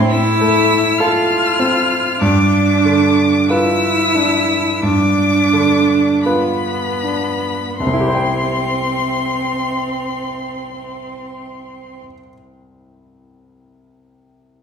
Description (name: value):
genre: classical, slow romantic movement for piano trio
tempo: 37-52 BPM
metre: 4/4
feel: rubato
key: C major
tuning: A4 = 439 Hz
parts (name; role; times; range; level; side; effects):
- rich violin; melody; 0.0-12.0 s; B5 to F6; -20 LUFS; left 5 dB; none
- clear cello; second line; 0.0-12.0 s; B3 to F4; -17 LUFS; right 4 dB; none
- clear baby grand piano; accompaniment; 0.0-14.6 s; C2 to G5; -18 LUFS; left 1 dB; none
room: wet recital hall reverb, RT60 1.4 s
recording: heard from further back in the room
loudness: -13 LUFS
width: side -7 dB against mid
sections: 0.0-7.8 A section; 7.8-13.8 B section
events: slowing down 0.0-7.8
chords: 0.0 F/A; 2.2 G7; 7.8 C